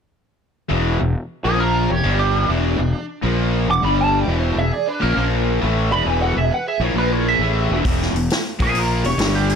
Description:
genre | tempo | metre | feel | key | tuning
blues rock power trio and southern rock | 134 BPM | 4/4 | swing 68% on 8ths | unclear | A4 = 441 Hz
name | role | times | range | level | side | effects
cranked stack guitar | riff | 0.7-9.6 s | E2 to A#3 | -21 LUFS | left 2 dB | overdrive
fuzz fingered electric bass | bass | 0.7-9.6 s | E1 to A#1 | -21 LUFS | equal | overdrive
lightly driven lead guitar | melody | 1.4-9.6 s | G4 to D6 | -21 LUFS | right 2 dB | wah
bluesy overdriven lead guitar | second line | 1.5-9.6 s | A#3 to F#5 | -30 LUFS | right 4 dB | distortion, digital delay
vintage drum kit | drums | 7.8-9.6 s | hi-hat, kick drum, snare drum | -22 LUFS | equal | none
room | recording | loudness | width
studio ambience | none | -16 LUFS | side -7 dB against mid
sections
0.7-9.6 A section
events
none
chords
0.7 E5; 1.4 A#5; 1.8 E5; 2.0 G5; 2.5 E5; 3.2 A#5; 3.6 E5; 3.8 G5; 4.3 E5; 5.2 A#5; 5.6 E5; 7.0 A#5; 7.4 E; 8.5 A#5; 9.0 E5

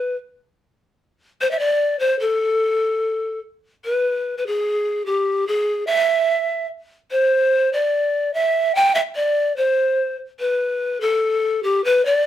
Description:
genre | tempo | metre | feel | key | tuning
andean folk | 73 BPM | 4/4 | straight | A minor | A4 = 440 Hz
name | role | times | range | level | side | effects
breathy large pan pipes | solo | 0.0-12.3 s | G4 to G5 | -17 LUFS | equal | none
room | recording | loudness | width
moderate studio reverb, RT60 0.5 s | none | -18 LUFS | side -11 dB against mid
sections
0.0-3.8 A section; 3.8-12.3 B section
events
none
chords
none

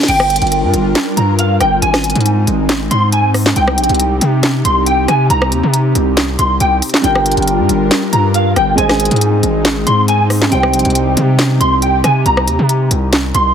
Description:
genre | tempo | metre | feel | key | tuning
hip hop, trap | 138 BPM | 4/4 | half-time | unclear | A4 = 440 Hz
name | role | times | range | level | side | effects
dark baby grand piano | accompaniment | 0.0-0.1, 7.0-13.5 s | C3 to Eb5 | -19 LUFS | right 4 dB | none
trap drum kit | drums | 0.0-13.5 s | crash cymbal, handclaps, hi-hat, rim click, snare drum | -16 LUFS | equal | none
clean electric guitar | melody | 0.1-13.5 s | F5 to C6 | -16 LUFS | equal | ensemble chorus
airy breathy pad | sustained chords | 0.1-13.5 s | C3 to Bb4 | -18 LUFS | equal | chorus
distorted 808-style bass | bass | 0.1-13.5 s | G1 to C3 | -15 LUFS | equal | distortion
room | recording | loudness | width
little or no reverb | heavily compressed radio sound | -11 LUFS | side -8 dB against mid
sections
0.1-13.5 A section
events
none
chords
0.1 Gm7; 1.8 Ab; 3.6 Cm; 7.0 Gm7; 8.8 Ab; 10.5 Cm

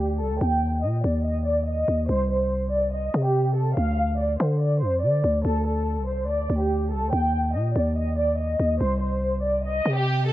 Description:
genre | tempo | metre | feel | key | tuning
hip hop, drill | 143 BPM | 4/4 | half-time | unclear | A4 = 440 Hz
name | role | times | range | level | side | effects
dark studio violin section | melody | 0.0-10.3 s | G4 to G5 | -25 LUFS | equal | low-pass filter, ping-pong delay
growling 808-style bass | bass | 0.0-10.3 s | C2 to D3 | -24 LUFS | equal | none
room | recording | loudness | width
light reverb, studio ambience | none | -21 LUFS | side -14 dB against mid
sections
0.0-10.3 A section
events
filter sweep on violin section 0.0-10.3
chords
0.4 Eb; 2.1 N.C.; 3.8 D5; 7.1 Eb; 8.8 N.C.

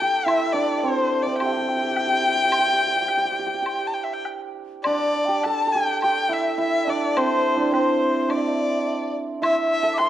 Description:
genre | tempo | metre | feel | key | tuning
chinese traditional, Chinese chamber ensemble | 106 BPM | 4/4 | rubato | G zhi mode | A4 = 440 Hz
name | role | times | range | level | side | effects
clear erhu | melody | 0.0-10.1 s | C5 to C6 | -23 LUFS | left 2 dB | none
hammered dulcimer | second line | 0.0-10.1 s | C4 to C5 | -24 LUFS | right 3 dB | none
mellow hollow large dizi | second line | 0.0-10.1 s | C5 to D6 | -26 LUFS | left 4 dB | none
woodblock | percussion | 0.3-10.1 s | none | -31 LUFS | left 1 dB | none
room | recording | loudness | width
wet recital hall reverb, RT60 1.3 s | worn, warbling old tape, cassette tape, warbly pitch drift | -20 LUFS | side -12 dB against mid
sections
0.0-4.8 A section; 4.8-10.1 B section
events
none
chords
none

